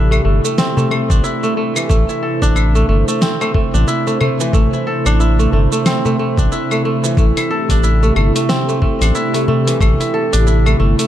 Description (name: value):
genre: organic downtempo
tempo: 91 BPM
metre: 4/4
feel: swing 59% on 16ths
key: A minor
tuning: A4 = 442 Hz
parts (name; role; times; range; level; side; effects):
- warm analog pad; sustained chords; 0.0-11.1 s; C3 to C5; -20 LUFS; right 1 dB; chorus, sidechain pumping
- kora; arpeggios; 0.0-11.1 s; E3 to A4; -18 LUFS; equal; low-pass filter, ping-pong delay
- round analog bass; bass; 0.0-10.9 s; G1 to A1; -13 LUFS; equal; sidechain pumping
- deep house drum kit; drums; 0.1-11.1 s; claves, hi-hat, shaker, snare drum; -21 LUFS; equal; none
- darbuka; percussion; 0.3-11.0 s; none; -22 LUFS; left 2 dB; none
- electronic kick drum; drums; 1.1-10.0 s; none; -17 LUFS; equal; none
room: moderate concert hall reverb, RT60 2.1 s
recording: dark, warm production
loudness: -12 LUFS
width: side -12 dB against mid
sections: 0.0-11.1 A section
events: none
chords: 0.0 Am7